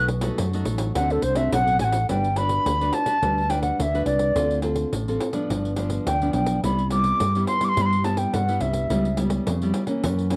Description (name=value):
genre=samba and choro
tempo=106 BPM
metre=4/4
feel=straight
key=G major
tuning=A4 = 439 Hz
part: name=wooden flute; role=melody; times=0.0-9.2 s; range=A4 to D6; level=-25 LUFS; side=equal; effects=none
part: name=nylon-string guitar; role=accompaniment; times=0.0-10.4 s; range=F#2 to B4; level=-29 LUFS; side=equal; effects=none
part: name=mellow fretless electric bass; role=bass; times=0.0-10.4 s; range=G1 to G2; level=-28 LUFS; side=equal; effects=none
part: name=pandeiro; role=percussion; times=0.1-10.4 s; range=none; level=-33 LUFS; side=equal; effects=none
room=moderate small room reverb, RT60 0.5 s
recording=worn, warbling old tape, cassette tape, warbly pitch drift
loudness=-23 LUFS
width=mono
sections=0.0-2.1 A section; 2.1-10.4 B section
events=flute solo 0.0-2.1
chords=0.0 B7; 1.0 D7; 2.1 Gmaj7; 4.4 Dm7; 5.5 G7; 6.6 Cmaj7; 8.9 C#m7b5